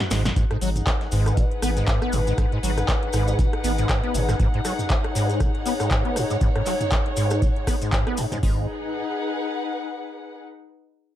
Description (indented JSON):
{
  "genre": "acid house",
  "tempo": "119 BPM",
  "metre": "4/4",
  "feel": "swing 57% on 16ths",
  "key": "G# minor",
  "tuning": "A4 = 439 Hz",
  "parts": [
    { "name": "electro analog drum machine", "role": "drums", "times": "0.0-8.4 s", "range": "handclaps, hi-hat, rim click, snare drum, toms", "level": "-28 LUFS", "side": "equal", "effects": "none" },
    { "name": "overdriven acid bass", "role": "riff", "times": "0.1-8.7 s", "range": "G#2 to B3", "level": "-25 LUFS", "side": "equal", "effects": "ensemble chorus, sidechain pumping, tape echo" },
    { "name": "saturated sub bass", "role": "bass", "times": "0.1-4.3, 8.4-8.7 s", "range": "G#1", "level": "-25 LUFS", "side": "equal", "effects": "sidechain pumping" },
    { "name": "breakbeat sampler-style drum kit", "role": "drums", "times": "0.1-4.4 s", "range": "hi-hat, snare drum", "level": "-39 LUFS", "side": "equal", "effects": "none" },
    { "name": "cabasa", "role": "percussion", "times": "0.1-8.4 s", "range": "none", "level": "-36 LUFS", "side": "left 2 dB", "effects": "none" },
    { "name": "electro analog drum machine", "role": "drums", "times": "0.4-8.6 s", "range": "hi-hat, kick drum", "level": "-23 LUFS", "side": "equal", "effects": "none" },
    { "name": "dark chamber string section", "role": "texture", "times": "0.4-10.4 s", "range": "D#4 to F#5", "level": "-28 LUFS", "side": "left 2 dB", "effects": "sidechain pumping" }
  ],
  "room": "light reverb",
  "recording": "none",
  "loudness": "-20 LUFS",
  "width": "side -12 dB against mid",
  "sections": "0.4-8.4 A section; 8.4-10.4 B section",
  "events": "break 0.0-0.4; drum fill 0.0-0.4",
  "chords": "0.4 G#m7"
}